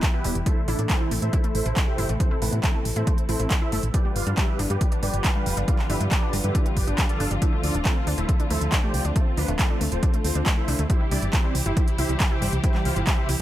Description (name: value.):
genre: uplifting trance.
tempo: 138 BPM.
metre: 4/4.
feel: straight.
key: A minor.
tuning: A4 = 439 Hz.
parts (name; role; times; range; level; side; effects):
supersaw chords; melody; 0.0-13.3 s; A3 to B5; -31 LUFS; right 1 dB; phaser, vintage 12-bit sampler grit, sidechain pumping, low-pass filter, dub echo.
warm studio string section; sustained chords; 0.0-13.4 s; B2 to A4; -32 LUFS; equal; vintage 12-bit sampler grit, sidechain pumping, low-pass filter.
big-room dance drum kit; drums; 0.0-13.4 s; handclaps, hi-hat; -29 LUFS; right 1 dB; none.
electronic kick drum; drums; 0.0-13.2 s; none; -22 LUFS; equal; none.
wide unison pluck; arpeggios; 0.1-13.4 s; G3 to E4; -33 LUFS; left 1 dB; sidechain pumping, digital delay.
solid FM bass; bass; 0.2-13.4 s; D1 to A2; -26 LUFS; equal; sidechain pumping.
room: little or no reverb.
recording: none.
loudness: -21 LUFS.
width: side -13 dB against mid.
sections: 0.0-13.4 A section.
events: filter sweep on string section 0.0-13.4.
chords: 0.5 Am; 3.9 G7; 7.4 Dm7; 10.9 C.